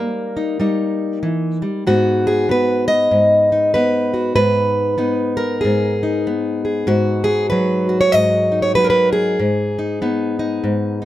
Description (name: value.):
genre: folk, solo fingerstyle acoustic guitar.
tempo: 96 BPM.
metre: 4/4.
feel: swing 61% on 8ths.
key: G# minor.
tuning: A4 = 441 Hz.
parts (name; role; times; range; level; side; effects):
fingerpicked plugged-in steel-string acoustic guitar; solo; 0.0-11.1 s; G#2 to D#5; -15 LUFS; equal; none.
room: light reverb.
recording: none.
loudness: -15 LUFS.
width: side -13 dB against mid.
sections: 0.0-1.9 A section; 1.9-11.1 B section.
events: none.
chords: 0.0 D#/G; 1.9 G#m7; 6.9 G#m9; 9.4 G#m.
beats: 0.62 1.24 | 1.87 2.50 3.13 3.75 | 4.38 5.01 5.64 6.26 | 6.89 7.52 8.14 8.77 | 9.39 10.02 10.65.